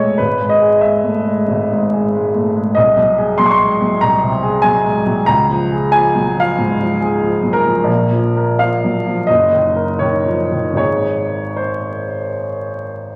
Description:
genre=classical, romantic character piece for solo piano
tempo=75-97 BPM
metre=4/4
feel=rubato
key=unclear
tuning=A4 = 441 Hz
part: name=warm baby grand piano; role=solo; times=0.0-13.2 s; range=Gb1 to Db6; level=-16 LUFS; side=equal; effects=none
room=wet recital hall reverb, RT60 1.7 s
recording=vinyl crackle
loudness=-15 LUFS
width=mono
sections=0.0-13.2 A section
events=none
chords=0.2 E/G#; 2.8 Ab7/C; 5.3 Db; 7.9 Bb5; 9.3 Ebm/Gb; 10.8 Ab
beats=| 0.19 0.83 1.48 2.13 | 2.75 3.38 4.01 4.64 | 5.28 5.93 6.58 7.22 | 7.88 8.62 9.29 10.01 | 10.79 11.58 12.34 13.09

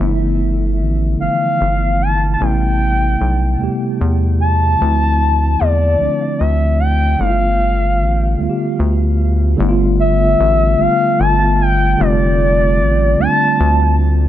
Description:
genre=slow six-eight R&B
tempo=50 BPM (dotted quarters)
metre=6/8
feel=straight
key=unclear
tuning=A4 = 436 Hz
part: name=mellow tine electric piano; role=accompaniment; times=0.0-14.3 s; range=C3 to G4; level=-18 LUFS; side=equal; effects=medium stereo tremolo
part: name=rubbery square bass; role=bass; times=0.0-14.3 s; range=F1 to E2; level=-15 LUFS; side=equal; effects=none
part: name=gliding portamento lead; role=melody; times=1.2-14.0 s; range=D5 to A5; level=-17 LUFS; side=left 1 dB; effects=chorus, phaser, tape echo
room=little or no reverb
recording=none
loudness=-12 LUFS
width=side -12 dB against mid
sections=0.0-9.6 A section; 9.6-14.3 B section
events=none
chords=0.0 G13; 2.4 Am9; 4.8 Dm9; 7.2 G9; 12.0 F6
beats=1.19 | 2.39 3.59 | 4.79 5.99 | 7.19 8.39 | 9.59 10.79 | 11.99 13.19

